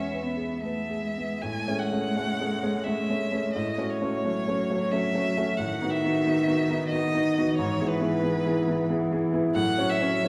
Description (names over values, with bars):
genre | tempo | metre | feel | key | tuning
classical, slow romantic movement for piano trio | 72-93 BPM | 3/4 | rubato | E major | A4 = 440 Hz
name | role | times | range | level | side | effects
rich violin | melody | 0.0-10.3 s | B4 to G#5 | -33 LUFS | equal | none
rich cello | second line | 0.0-10.3 s | D#3 to C#4 | -34 LUFS | equal | none
warm concert grand piano | accompaniment | 0.0-10.3 s | E2 to C#5 | -29 LUFS | equal | none
room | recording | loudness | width
wet recital hall reverb, RT60 1.5 s | recorded in a church or concert hall, vinyl crackle | -27 LUFS | mono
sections
0.0-1.4 A section; 1.4-10.3 B section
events
none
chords
0.0 E; 1.4 Amaj7; 3.5 F#m/A; 5.6 B7/A; 7.6 E/G#; 9.6 F#m7/A